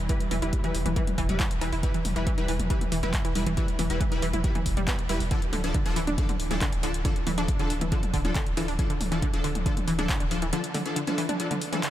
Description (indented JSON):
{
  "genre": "driving peak-time techno",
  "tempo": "138 BPM",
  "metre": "4/4",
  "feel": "straight",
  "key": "unclear",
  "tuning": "A4 = 439 Hz",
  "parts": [
    { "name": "saturated sub bass", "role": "bass", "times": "0.0-10.5 s", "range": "D1 to E1", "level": "-32 LUFS", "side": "equal", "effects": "tube saturation, sidechain pumping, low-pass filter" },
    { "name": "wide unison pluck", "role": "riff", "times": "0.1-11.9 s", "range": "D3 to E4", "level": "-31 LUFS", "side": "equal", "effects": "tube saturation, sidechain pumping, analog delay" },
    { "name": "rave stab", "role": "stabs", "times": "0.1-11.8 s", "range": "F3 to B4", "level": "-32 LUFS", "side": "left 1 dB", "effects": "chorus, built-in reverb, sidechain pumping, analog delay" },
    { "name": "electronic kick drum", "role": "drums", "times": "0.1-10.2 s", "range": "none", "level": "-27 LUFS", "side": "equal", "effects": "none" },
    { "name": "punchy analog drum machine", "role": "drums", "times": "0.1-11.9 s", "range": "handclaps, hi-hat, toms", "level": "-33 LUFS", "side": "left 1 dB", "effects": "none" }
  ],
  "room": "light reverb",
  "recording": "none",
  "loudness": "-24 LUFS",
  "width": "side -12 dB against mid",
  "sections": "0.0-11.9 A section",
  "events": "none",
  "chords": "0.0 Em; 5.3 Dm"
}